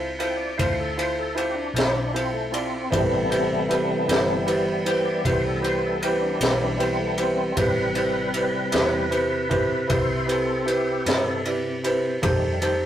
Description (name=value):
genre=slow blues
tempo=52 BPM (dotted quarters)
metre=12/8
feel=straight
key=A minor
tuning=A4 = 437 Hz
part: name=clear grand piano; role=accompaniment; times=0.0-12.9 s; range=Eb4 to D5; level=-24 LUFS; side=right 1 dB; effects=none
part: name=vintage muted fingered electric bass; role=bass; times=0.0-12.9 s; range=G1 to G2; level=-33 LUFS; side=left 1 dB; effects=none
part: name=tonewheel organ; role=sustained chords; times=0.2-12.8 s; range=C3 to G5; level=-27 LUFS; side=left 1 dB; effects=slow rotary speaker, overdrive, chorus vibrato
part: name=raw garage drum kit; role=drums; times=0.2-12.8 s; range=kick drum, ride cymbal, snare drum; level=-27 LUFS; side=equal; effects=none
room=wet booth ambience, RT60 0.2 s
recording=rough rehearsal-room recording, warm saturation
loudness=-21 LUFS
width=side -10 dB against mid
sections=0.0-12.9 A section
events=tonewheel organ solo 0.0-12.9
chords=0.0 Dm7; 2.9 Am7; 12.2 F7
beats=0.59 1.75 | 2.92 4.08 5.25 6.41 | 7.57 8.74 9.90 11.06 | 12.23